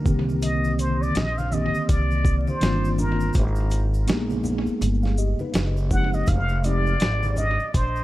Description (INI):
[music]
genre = hip hop, jazz-hop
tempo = 82 BPM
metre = 4/4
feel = swing 60% on 16ths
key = unclear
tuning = A4 = 442 Hz
[part]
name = mellow tine electric piano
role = accompaniment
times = 0.0-6.9 s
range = D3 to F5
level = -27 LUFS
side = equal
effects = medium stereo tremolo, tape echo
[part]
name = upright bass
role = bass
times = 0.0-8.0 s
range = F1 to C2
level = -24 LUFS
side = equal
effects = none
[part]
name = dusty soul sampler-style drum kit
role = drums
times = 0.1-7.9 s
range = hi-hat, kick drum, shaker, snare drum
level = -24 LUFS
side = equal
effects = tape echo
[part]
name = congas and maracas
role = percussion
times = 0.1-8.0 s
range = none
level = -36 LUFS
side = left 1 dB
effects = none
[part]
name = trumpet with plunger mute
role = melody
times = 0.4-8.0 s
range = Bb4 to Gb5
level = -28 LUFS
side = equal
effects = tape echo
[sound]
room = little or no reverb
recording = echo-heavy mix, vinyl crackle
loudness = -20 LUFS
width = side -16 dB against mid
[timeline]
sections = 0.0-8.0 A section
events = muted trumpet solo 0.0-8.0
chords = 0.1 Cm9; 3.4 Abmadd9; 5.5 Gbsus2; 6.3 Fm9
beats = | 0.42 1.16 1.89 2.62 | 3.35 4.08 4.81 5.54 | 6.28 7.01 7.74